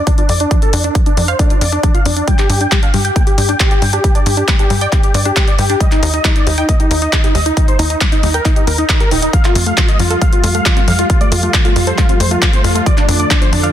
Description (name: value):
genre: uplifting trance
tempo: 136 BPM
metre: 4/4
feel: straight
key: unclear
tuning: A4 = 442 Hz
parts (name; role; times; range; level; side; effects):
- big supersaw lead; melody; 0.0-13.7 s; D4 to G5; -17 LUFS; equal; sidechain pumping, low-pass filter, dub echo
- tight sequenced synth; arpeggios; 0.0-13.7 s; F3 to G5; -22 LUFS; left 1 dB; chorus, phaser, sidechain pumping, digital delay
- big-room dance drum kit; drums; 0.1-13.7 s; handclaps, hi-hat; -18 LUFS; left 1 dB; none
- electronic kick drum; drums; 0.1-13.4 s; none; -13 LUFS; equal; none
- tight sequencer bass; bass; 0.3-13.7 s; Eb1 to G2; -16 LUFS; equal; tube saturation, sidechain pumping
- lush unison pad; sustained chords; 9.3-13.7 s; D3 to A3; -22 LUFS; equal; chorus, sidechain pumping
room: little or no reverb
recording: dense, heavily limited modern master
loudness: -10 LUFS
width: side -11 dB against mid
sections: 0.0-13.7 A section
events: none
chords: 0.0 Dm/F; 2.3 G5; 5.8 Eb; 9.3 Fadd9; 12.9 Dm/F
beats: 0.07 | 0.51 0.95 1.39 1.83 | 2.28 2.72 3.16 3.60 | 4.04 4.48 4.92 5.36 | 5.80 6.25 6.69 7.13 | 7.57 8.01 8.45 8.89 | 9.34 9.78 10.22 10.66 | 11.10 11.54 11.98 12.42 | 12.86 13.30